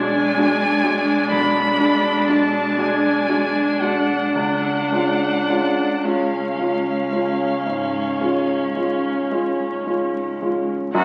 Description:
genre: classical, slow romantic movement for piano quartet.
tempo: 35-43 BPM (dotted quarters).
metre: 12/8.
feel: rubato.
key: unclear.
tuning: A4 = 440 Hz.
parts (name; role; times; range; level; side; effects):
warm violin; melody; 0.0-11.0 s; E#5 to B5; -27 LUFS; equal; none.
rich cello; second line; 0.0-11.0 s; G#3 to F#4; -32 LUFS; equal; none.
rich viola; accompaniment; 0.0-11.0 s; C#4 to D4; -25 LUFS; equal; none.
warm concert grand piano; accompaniment; 0.0-11.0 s; B1 to F#4; -24 LUFS; equal; none.
room: wet recital hall reverb, RT60 1.5 s.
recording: very old 78 rpm record, vinyl crackle.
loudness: -20 LUFS.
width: mono.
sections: 0.0-10.9 A section.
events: none.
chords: 0.0 G#m7b5/B; 4.4 C#.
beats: 1.31 2.78 | 4.35 6.04 7.66 9.31 | 10.94.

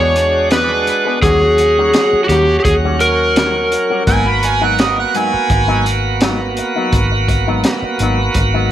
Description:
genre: straight-eighth soul blues.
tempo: 84 BPM.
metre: 4/4.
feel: straight.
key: G# minor.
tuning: A4 = 440 Hz.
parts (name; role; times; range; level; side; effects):
overdriven slide guitar; melody; 0.0-5.1 s; F#4 to C#5; -14 LUFS; equal; slapback echo, plate reverb.
bright tonewheel organ; accompaniment; 0.0-8.7 s; F#3 to F#4; -19 LUFS; right 3 dB; slow rotary speaker, overdrive, plate reverb.
electric guitar with an envelope filter; stabs; 0.0-8.7 s; G#2 to G#4; -23 LUFS; left 6 dB; plate reverb.
vintage muted fingered electric bass; bass; 0.0-8.7 s; G#1 to E2; -18 LUFS; equal; none.
crunchy breakbeat drum kit; drums; 0.2-8.5 s; hi-hat, kick drum, snare drum; -18 LUFS; equal; none.
warm harmonica; second line; 4.1-5.9 s; D#5 to B5; -17 LUFS; right 4 dB; overdrive, plate reverb.
room: moderate studio reverb, RT60 0.8 s.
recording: none.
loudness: -12 LUFS.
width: side -11 dB against mid.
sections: 0.0-8.7 A section.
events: none.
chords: 0.0 E7; 1.2 D#7#9; 4.1 G#m7.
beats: 0.52 | 1.23 1.94 2.65 3.37 | 4.08 4.79 5.50 6.21 | 6.93 7.64 8.35.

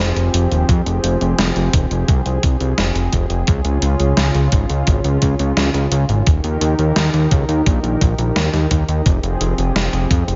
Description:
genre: synthwave.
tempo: 86 BPM.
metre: 4/4.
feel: straight.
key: F minor.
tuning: A4 = 440 Hz.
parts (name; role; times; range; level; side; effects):
warm analog pad; sustained chords; 0.0-10.4 s; Db3 to Bb4; -24 LUFS; equal; subtle chorus, sidechain pumping, shimmer reverb.
fat analog bass; bass; 0.0-10.4 s; Eb1 to F2; -20 LUFS; equal; none.
gated 80s digital drum machine; drums; 0.2-10.4 s; hi-hat, snare drum; -24 LUFS; equal; gated reverb, gated reverb snare.
electronic kick drum; drums; 0.7-10.2 s; none; -18 LUFS; equal; none.
room: light reverb, digital ambience.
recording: nothing above 7.5 kHz.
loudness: -17 LUFS.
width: mono.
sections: 0.0-10.4 A section.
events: none.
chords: 0.0 Fmadd9; 3.5 Db; 6.3 Eb; 9.1 Fmadd9.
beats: | 0.69 1.39 2.08 2.78 | 3.48 4.18 4.87 5.57 | 6.27 6.97 7.66 8.36 | 9.06 9.76.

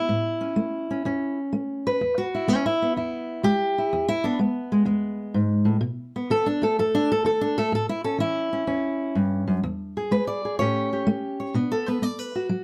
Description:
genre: acoustic country blues, solo or duo.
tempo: 126 BPM.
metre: 4/4.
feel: swing 68% on 8ths.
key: E mixolydian.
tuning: A4 = 440 Hz.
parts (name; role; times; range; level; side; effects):
fingerpicked steel-string acoustic guitar; solo; 0.0-12.6 s; E2 to D5; -25 LUFS; equal; none.
room: light reverb.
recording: none.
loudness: -25 LUFS.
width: mono.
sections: 0.0-12.6 A section.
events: steel-string acoustic guitar solo 0.0-12.6.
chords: 0.0 A; 2.0 E; 5.8 B7; 7.7 A7; 9.6 E; 10.6 A7; 11.5 B5.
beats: | 0.10 0.58 1.06 1.53 | 2.01 2.49 2.96 3.44 | 3.92 4.39 4.87 5.34 | 5.82 6.30 6.77 7.25 | 7.73 8.21 8.68 9.16 | 9.64 10.12 10.59 11.07 | 11.55 12.03 12.51.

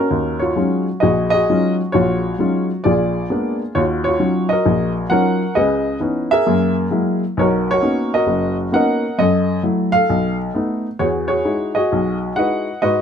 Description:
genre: solo jazz.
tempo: 132 BPM.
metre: 4/4.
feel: swing 65% on 8ths.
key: Eb minor.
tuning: A4 = 440 Hz.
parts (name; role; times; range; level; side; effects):
warm upright piano; solo; 0.0-13.0 s; F#1 to Gb5; -15 LUFS; equal; none.
room: light reverb.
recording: minimal, uncompressed stereo recording.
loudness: -15 LUFS.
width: side -8 dB against mid.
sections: 0.0-3.7 A section; 3.7-13.0 B section.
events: none.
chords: 0.1 Ebm11; 2.8 Bb7b9; 3.7 Ebm9; 5.6 Dbm9; 6.5 Gb9; 7.4 Bmaj9; 9.2 Gbm7; 10.1 B7; 11.0 Emaj9.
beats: | 0.11 0.56 1.02 1.48 | 1.93 2.39 2.84 3.29 | 3.75 4.20 4.66 5.11 | 5.56 6.02 6.47 6.92 | 7.38 7.83 8.28 8.73 | 9.19 9.64 10.09 10.55 | 11.00 11.46 11.91 12.36 | 12.82.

